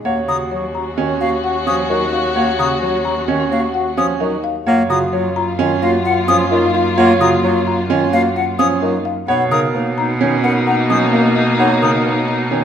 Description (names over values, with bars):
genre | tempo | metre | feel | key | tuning
classical, minimalist pattern music | 130 BPM | 5/4 | straight | unclear | A4 = 440 Hz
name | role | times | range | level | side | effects
folk marimba with medium mallets | melody | 0.0-12.6 s | Bb4 to Bb5 | -22 LUFS | left 8 dB | none
dark chamber string section | sustained chords | 0.0-12.6 s | Bb3 to Gb4 | -22 LUFS | left 3 dB | none
mellow clarinet | second line | 0.1-12.6 s | D#4 to Gb4 | -22 LUFS | right 1 dB | none
warm bass clarinet | accompaniment | 0.1-12.6 s | Db3 to B3 | -22 LUFS | equal | none
warm grand piano | arpeggios | 0.1-12.6 s | Db4 to Db5 | -20 LUFS | right 6 dB | none
clear cello | bass | 0.1-12.6 s | Eb2 to B2 | -22 LUFS | right 2 dB | none
bright silver concert flute | arpeggios | 0.3-11.9 s | F5 to D#6 | -21 LUFS | left 3 dB | none
room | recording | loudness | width
moderate recital hall reverb, RT60 1.4 s | none | -14 LUFS | side -8 dB against mid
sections
0.0-12.6 A section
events
none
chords
0.1 Ebm7; 4.7 Gbmaj7; 9.3 Bmaj7